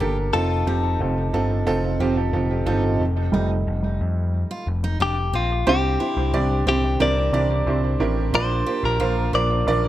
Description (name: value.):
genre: piano-driven pop.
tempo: 90 BPM.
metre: 4/4.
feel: straight.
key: unclear.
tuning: A4 = 442 Hz.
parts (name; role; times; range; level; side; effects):
direct-recorded clean electric guitar; melody; 0.0-9.9 s; F4 to D5; -24 LUFS; left 3 dB; phaser, analog delay.
warm upright piano; accompaniment; 0.0-9.9 s; Bb2 to D5; -23 LUFS; right 4 dB; analog delay.
picked steel-string acoustic guitar; riff; 0.0-9.5 s; C4 to G4; -33 LUFS; right 3 dB; analog delay.
overdriven picked electric bass; bass; 0.0-9.9 s; F1 to F2; -23 LUFS; left 1 dB; none.
room: light reverb, studio reverb.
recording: echo-heavy mix.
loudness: -19 LUFS.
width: side -13 dB against mid.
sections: 0.0-3.0 A section; 3.0-5.7 B section; 5.7-9.9 C section.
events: upright piano solo 3.0-5.7.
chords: 0.3 F7; 5.7 Cadd9; 8.3 Bb.